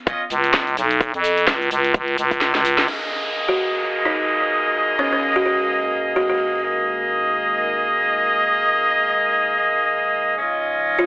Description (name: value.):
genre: bass house.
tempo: 128 BPM.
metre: 4/4.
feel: swing 58% on 16ths.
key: unclear.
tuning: A4 = 442 Hz.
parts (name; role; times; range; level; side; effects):
bright horn section; stabs; 0.1-11.1 s; A#3 to D#5; -18 LUFS; equal; sidechain pumping, digital delay.
electronic kick drum; drums; 0.1-2.4 s; none; -19 LUFS; equal; overdrive.
garage drum kit; drums; 0.1-3.0 s; crash cymbal, hi-hat, shaker, snare drum; -22 LUFS; equal; overdrive.
growling FM bass; bass; 0.3-2.9 s; B1 to E#2; -17 LUFS; equal; overdrive, sidechain pumping.
dark analog pad; sustained chords; 2.9-11.1 s; G#3 to D#5; -39 LUFS; equal; chorus, sidechain pumping.
downlifter; sound effects; 2.9-6.6 s; none; -28 LUFS; equal; none.
buzzing kalimba; melody; 3.5-6.4, 11.0-11.1 s; C#4 to F#4; -23 LUFS; equal; digital delay.
room: moderate plate reverb, RT60 2.8 s.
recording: telephone sound.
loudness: -17 LUFS.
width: side -20 dB against mid.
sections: 0.0-2.9 A section; 2.9-11.1 B section.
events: filter sweep on horn section 0.0-2.9; kick drops out 2.4-2.9; drum fill 2.4-2.9; band accent 2.8; filter sweep on analog synth pad 2.9-11.1.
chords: 0.0 C#; 2.9 G#sus2; 10.4 C#add9.